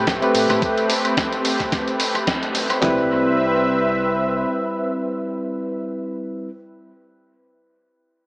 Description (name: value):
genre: nu-disco, nu disco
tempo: 109 BPM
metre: 4/4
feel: swing 56% on 16ths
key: C major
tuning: A4 = 440 Hz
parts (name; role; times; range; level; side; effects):
- lush unison pad; sustained chords; 0.0-5.8 s; A3 to E5; -22 LUFS; equal; chorus, sidechain pumping
- fingered electric bass; bass; 0.0-4.4 s; A1 to A2; -30 LUFS; equal; none
- dusty soul sampler-style drum kit; drums; 0.1-3.0 s; handclaps, kick drum, snare drum, toms; -26 LUFS; equal; none
- dusty soul sampler-style drum kit; drums; 0.1-2.8 s; hi-hat, ride cymbal, snare drum, tambourine, woodblock; -23 LUFS; equal; dub echo
- barky tine electric piano; accompaniment; 0.2-6.5 s; G3 to B4; -22 LUFS; equal; sidechain pumping, dub echo
- congas; percussion; 0.5-0.6 s; none; -34 LUFS; equal; none
room: wet spring reverb, RT60 2.4 s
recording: echo-heavy mix, small speaker sound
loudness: -18 LUFS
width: side -26 dB against mid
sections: 0.0-2.8 A section; 2.8-5.0 B section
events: drop 0.0-2.8; band accent 2.3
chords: 0.0 Am9; 2.8 Cmaj7